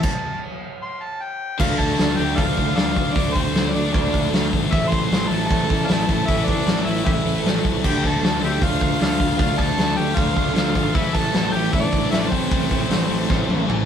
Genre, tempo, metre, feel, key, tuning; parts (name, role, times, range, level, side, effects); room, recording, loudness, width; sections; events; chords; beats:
hard rock; 154 BPM; 4/4; straight; A4 = 439 Hz
overdriven harmonica; melody; 0.0-13.7 s; G4 to C6; -27 LUFS; left 1 dB
fuzz fingered electric bass; bass; 0.0-13.9 s; G#1 to D2; -25 LUFS; equal; overdrive
big rock drum kit; drums; 0.0-13.8 s; crash cymbal, hi-hat, kick drum, snare drum, toms; -22 LUFS; equal
octave-fuzz lead guitar; second line; 1.6-13.7 s; C4 to C5; -30 LUFS; right 2 dB; distortion
mellow tonewheel organ; sustained chords; 1.6-13.9 s; A3 to F5; -35 LUFS; left 2 dB
heavy high-gain guitar; riff; 1.6-13.9 s; A2 to D4; -27 LUFS; left 6 dB; distortion
overdriven semi-hollow guitar; riff; 1.6-13.9 s; A2 to D4; -27 LUFS; right 4 dB; tremolo
light reverb; band playing live in one room; -18 LUFS; side -8 dB against mid
0.0-1.6 A section; 1.6-13.9 B section
harmonica solo 0.0-1.6; stop 0.0-1.6; drum fill 13.3-13.9
0.0 N.C.; 1.6 Dm; 4.7 Am; 7.8 Dm; 11.0 Am
| 0.04 0.43 0.82 1.21 | 1.60 1.99 2.38 2.77 | 3.16 3.55 3.94 4.33 | 4.72 5.11 5.50 5.89 | 6.28 6.67 7.06 7.45 | 7.84 8.23 8.62 9.01 | 9.40 9.79 10.18 10.56 | 10.96 11.34 11.73 12.12 | 12.51 12.90 13.29 13.68